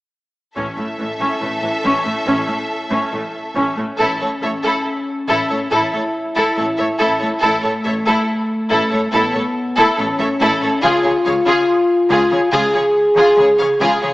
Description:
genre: cinematic, epic orchestral film score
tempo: 70 BPM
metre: 4/4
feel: straight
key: A major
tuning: A4 = 440 Hz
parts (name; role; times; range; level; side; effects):
- clear symphonic violin section; melody; 0.6-14.1 s; G#4 to E#5; -23 LUFS; left 1 dB; none
- warm symphonic violin section; second line; 0.6-14.1 s; E4 to C#5; -22 LUFS; equal; none
- warm symphonic viola section; accompaniment; 0.6-14.1 s; E3 to A4; -20 LUFS; equal; none
- mellow French horn section; sustained chords; 0.6-14.1 s; A3 to G#4; -18 LUFS; left 1 dB; none
- clear symphonic double bass section; bass; 0.6-13.9 s; A1 to C#2; -30 LUFS; right 1 dB; none
- warm symphonic cello section; bass; 0.6-14.1 s; A2 to C#3; -27 LUFS; equal; none
- taiko ensemble; drums; 0.6-2.2 s; none; -42 LUFS; equal; none
room: moderate scoring stage reverb, RT60 1.9 s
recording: small speaker sound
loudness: -14 LUFS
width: side -18 dB against mid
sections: 0.6-4.0 A section; 4.0-14.1 B section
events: none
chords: 0.6 A; 10.8 C#

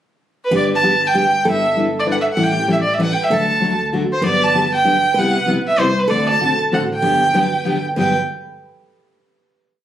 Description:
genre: acoustic string swing (jazz manouche)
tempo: 193 BPM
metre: 3/4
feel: swing 60% on 8ths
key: G major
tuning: A4 = 441 Hz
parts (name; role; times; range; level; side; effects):
- clear violin; melody; 0.4-8.2 s; B4 to A5; -16 LUFS; right 1 dB; none
- picked steel-string acoustic guitar; second line; 0.5-8.1 s; G4 to B4; -25 LUFS; right 5 dB; none
- picked steel-string acoustic guitar; accompaniment; 0.5-8.1 s; G2 to B4; -20 LUFS; left 2 dB; none
- upright bass; bass; 0.5-8.1 s; G1 to D2; -27 LUFS; right 1 dB; none
room: moderate studio reverb, RT60 1.0 s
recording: recorded on a phone in the room, club reverb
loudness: -14 LUFS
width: side -11 dB against mid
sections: 0.0-0.5 pickup bar; 0.5-8.0 A section; 8.0-8.9 final chord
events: none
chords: 0.0 N.C.; 0.5 G; 1.4 Em7/G; 2.4 A7; 3.3 D; 4.2 Gmaj7; 5.2 Cmaj7; 6.1 D7; 7.0 Gmaj7

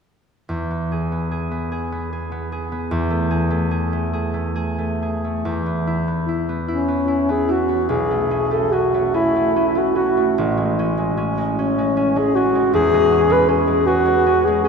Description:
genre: classical, impressionist duo for alto saxophone and harp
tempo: 43-53 BPM (dotted quarters)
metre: 6/8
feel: rubato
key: E major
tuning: A4 = 442 Hz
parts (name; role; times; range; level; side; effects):
- concert harp; accompaniment; 0.5-14.7 s; A1 to G#4; -21 LUFS; right 1 dB; none
- mellow alto saxophone; melody; 6.7-14.7 s; C#4 to B4; -17 LUFS; equal; none
room: wet cathedral reverb, RT60 5.3 s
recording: minimal, uncompressed stereo recording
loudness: -17 LUFS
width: side -5 dB against mid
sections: 0.5-5.5 A section; 5.5-14.7 B section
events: none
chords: 0.5 E; 2.9 A5/E; 5.5 E; 7.9 B11; 10.4 Amaj7; 12.7 E6

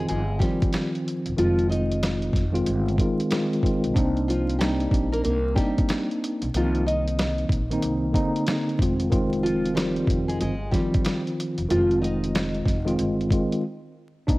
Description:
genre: hip hop, boom-bap hip-hop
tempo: 93 BPM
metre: 4/4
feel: swing 62% on 16ths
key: unclear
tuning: A4 = 440 Hz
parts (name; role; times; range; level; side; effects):
- nylon-string guitar; melody; 0.0-13.6 s; F3 to Eb5; -29 LUFS; equal; high-pass filter, low-pass filter
- mellow tine electric piano; accompaniment; 0.0-14.4 s; D3 to F4; -25 LUFS; equal; medium stereo tremolo, cassette tape, high-pass filter, low-pass filter
- upright bass; bass; 0.0-14.4 s; E1 to C2; -28 LUFS; equal; none
- dusty soul sampler-style drum kit; drums; 0.1-14.4 s; hi-hat, kick drum, snare drum; -25 LUFS; equal; none
room: light reverb, small room reverb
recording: home recording on cassette, vinyl crackle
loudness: -21 LUFS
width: side -20 dB against mid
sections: 0.0-14.3 A section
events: break 13.6-14.3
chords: 0.0 Fm7; 4.0 Cm9; 8.8 Fm7

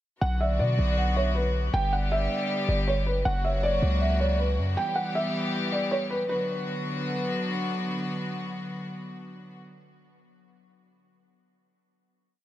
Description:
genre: hip hop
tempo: 158 BPM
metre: 4/4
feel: half-time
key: B harmonic minor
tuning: A4 = 440 Hz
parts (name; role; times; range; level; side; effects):
- felt-muted upright piano; melody; 0.2-7.4 s; B4 to G5; -30 LUFS; right 1 dB; low-pass filter
- warm studio string section; sustained chords; 0.2-9.6 s; C#3 to G4; -30 LUFS; left 1 dB; none
- warm 808-style bass; bass; 0.2-4.8 s; F#1 to B2; -25 LUFS; equal; none
- hollow clarinet-like synth lead; second line; 0.4-4.4 s; C#5 to F#5; -34 LUFS; right 3 dB; chorus, ping-pong delay
room: light reverb, small room ambience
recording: none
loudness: -24 LUFS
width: side -13 dB against mid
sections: 0.2-6.3 hook; 6.3-9.3 final chord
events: none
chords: 0.2 Bm; 1.7 G; 3.3 F#; 4.8 Em; 6.3 Bm

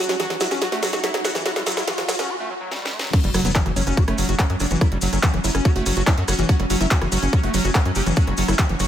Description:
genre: psychedelic trance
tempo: 143 BPM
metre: 4/4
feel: straight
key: unclear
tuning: A4 = 439 Hz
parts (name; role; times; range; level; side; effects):
- supersaw stab; melody; 0.0-8.9 s; F#3 to G4; -28 LUFS; equal; phaser, sidechain pumping, tape echo
- pulsing gated texture; sustained chords; 0.0-8.9 s; F#3 to F#4; -30 LUFS; right 2 dB; chorus, built-in reverb, sidechain pumping
- overdriven acid bass; riff; 0.0-8.9 s; E3 to G4; -28 LUFS; equal; auto-pan, sidechain pumping, ping-pong delay
- tight sequencer bass; bass; 0.0-8.9 s; F#1 to F#2; -24 LUFS; equal; high-pass filter
- drum and bass drum kit; drums; 0.0-8.9 s; crash cymbal, handclaps, hi-hat, rim click, snare drum; -25 LUFS; equal; overdrive, studio ambience
- riser and impact; sound effects; 0.1-4.8 s; none; -31 LUFS; equal; none
- warbly tape-like pad; texture; 0.0-2.3 s; C#4 to C#6; -36 LUFS; right 4 dB; chorus, built-in reverb, sidechain pumping
- maracas; percussion; 0.1-8.9 s; none; -30 LUFS; left 2 dB; none
- electronic kick drum; drums; 3.1-8.7 s; none; -17 LUFS; equal; overdrive, studio ambience
room: light reverb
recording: high-pass filter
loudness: -18 LUFS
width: side -10 dB against mid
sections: 0.0-3.1 A section; 3.1-8.9 B section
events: build-up 0.0-3.1; drum fill 0.0-2.3, 2.7-3.1; filter sweep on supersaw synth 0.0-3.1; riser 0.1-2.3; break 2.3-3.1; drop 3.1-8.9; impact 3.1-4.8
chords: 0.0 F#5

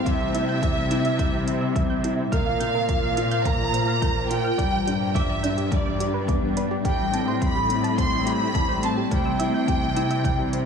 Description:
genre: piano and strings electronica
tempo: 106 BPM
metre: 4/4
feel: straight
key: unclear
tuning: A4 = 436 Hz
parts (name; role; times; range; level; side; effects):
- warm symphonic violin section; melody; 0.0-10.7 s; D5 to C6; -27 LUFS; right 1 dB; tape echo
- granular cloud pad; sustained chords; 0.0-10.7 s; Bb2 to G5; -30 LUFS; equal; built-in reverb, sidechain pumping
- dark grand piano; riff; 0.0-10.7 s; G3 to D5; -27 LUFS; left 2 dB; tape echo
- rich symphonic cello section; bass; 0.0-10.7 s; G2 to C3; -28 LUFS; equal; sidechain pumping
- electronic hi-hat; drums; 0.1-10.6 s; none; -37 LUFS; right 4 dB; none
- electronic kick drum; drums; 0.1-10.4 s; none; -26 LUFS; equal; overdrive
- soft round pluck; arpeggios; 0.2-10.4 s; G4 to G6; -34 LUFS; right 4 dB; chorus, sidechain pumping, tape echo
room: light reverb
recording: small room ambience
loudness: -21 LUFS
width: side -6 dB against mid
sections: 0.0-10.7 A section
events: none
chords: 0.1 C; 2.3 Bbsus2; 4.6 G; 6.9 Am7; 9.1 C

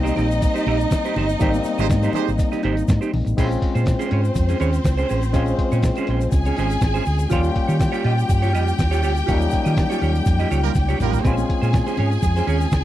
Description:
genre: disco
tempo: 122 BPM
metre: 4/4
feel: straight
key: Bb dorian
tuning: A4 = 440 Hz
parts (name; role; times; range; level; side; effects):
- rich studio string section; second line; 0.0-12.8 s; C4 to Ab5; -26 LUFS; equal; none
- barky tine electric piano; accompaniment; 0.0-12.8 s; F3 to F4; -25 LUFS; left 5 dB; overdrive
- semi-hollow electric guitar; accompaniment; 0.0-12.8 s; Db4 to Eb5; -26 LUFS; right 8 dB; harmonic tremolo
- hollow-body short-scale fingered electric bass; bass; 0.0-12.8 s; G1 to Eb3; -21 LUFS; equal; none
- lo-fi sampler-style drum kit; drums; 0.1-12.8 s; crash cymbal, hi-hat, kick drum, snare drum, toms; -21 LUFS; equal; none
- congas; percussion; 0.1-3.3, 11.2-12.3 s; none; -32 LUFS; left 5 dB; none
- tube shaker; percussion; 0.1-12.8 s; none; -45 LUFS; left 21 dB; none
- warm horn section; stabs; 1.8-2.3, 10.6-11.2 s; G3 to C5; -25 LUFS; right 20 dB; none
room: little or no reverb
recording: dry, close 1970s-style studio recording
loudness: -17 LUFS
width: side -13 dB against mid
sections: 0.0-3.4 A section; 3.4-12.8 B section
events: band accent 1.4-3.4, 9.3-11.2; drum fill 10.8-11.2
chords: 0.0 Abmaj7; 3.4 Bbm9; 7.3 Eb9; 11.2 Bbm9

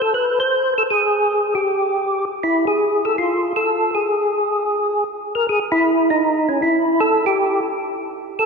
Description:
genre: jazz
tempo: 157 BPM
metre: 4/4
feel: swing 66% on 8ths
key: unclear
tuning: A4 = 439 Hz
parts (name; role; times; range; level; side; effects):
- percussive tonewheel organ; solo; 0.0-8.5 s; C#4 to C5; -16 LUFS; equal; slow rotary speaker, chorus vibrato
room: wet church reverb, RT60 3.5 s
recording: recorded in a church or concert hall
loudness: -16 LUFS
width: side -4 dB against mid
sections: 0.0-5.5 A section; 5.5-8.5 B section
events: none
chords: none

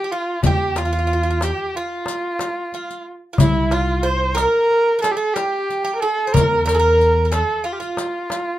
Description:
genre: Turkish makam ensemble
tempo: 183 BPM (eighths)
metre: 9/8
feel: straight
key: unclear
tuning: A4 = 440 Hz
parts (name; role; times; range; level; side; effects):
- clear kamancheh; melody; 0.0-8.6 s; E4 to C5; -20 LUFS; equal; none
- Greek bouzouki; second line; 0.0-8.6 s; E4 to C5; -25 LUFS; right 3 dB; none
- upright bass; bass; 0.4-7.4 s; C2 to E2; -20 LUFS; equal; none
- darbuka; percussion; 0.4-8.5 s; none; -21 LUFS; left 2 dB; none
- riq; percussion; 0.4-8.5 s; none; -28 LUFS; left 4 dB; none
room: moderate studio reverb, RT60 0.6 s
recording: minimal, uncompressed stereo recording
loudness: -17 LUFS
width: side -14 dB against mid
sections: 0.0-8.6 A section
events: none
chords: none

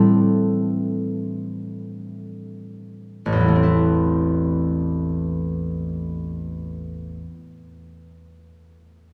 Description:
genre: classical, solo harp piece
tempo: 31-36 BPM (dotted quarters)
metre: 6/8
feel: rubato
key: A minor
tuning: A4 = 441 Hz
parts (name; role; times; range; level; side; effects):
- concert harp; solo; 0.0-7.3 s; A1 to E5; -23 LUFS; equal; none
room: wet recital hall reverb, RT60 1.5 s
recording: heard from further back in the room, small room ambience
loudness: -22 LUFS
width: mono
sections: 0.0-3.3 A section; 3.3-6.6 B section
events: slowing down 0.0-3.3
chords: 0.0 Am7; 3.3 Am

